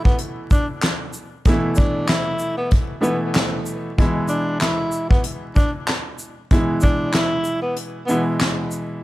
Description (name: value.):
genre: hip hop, boom-bap hip-hop.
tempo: 95 BPM.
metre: 4/4.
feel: swing 55% on 16ths.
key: unclear.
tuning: A4 = 440 Hz.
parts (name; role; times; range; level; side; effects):
breathy tenor saxophone; melody; 0.0-8.2 s; B3 to E4; -25 LUFS; equal; high-pass filter, low-pass filter, ping-pong delay.
warm upright piano; accompaniment; 0.0-9.0 s; B2 to E4; -24 LUFS; equal; high-pass filter, low-pass filter.
soft brush drum kit; drums; 0.1-8.9 s; handclaps, hi-hat, kick drum, shaker, snare drum; -19 LUFS; equal; none.
room: small room ambience.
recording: vinyl crackle.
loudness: -18 LUFS.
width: side -17 dB against mid.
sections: 0.0-9.0 A section.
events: none.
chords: 0.0 Asus2; 4.0 E.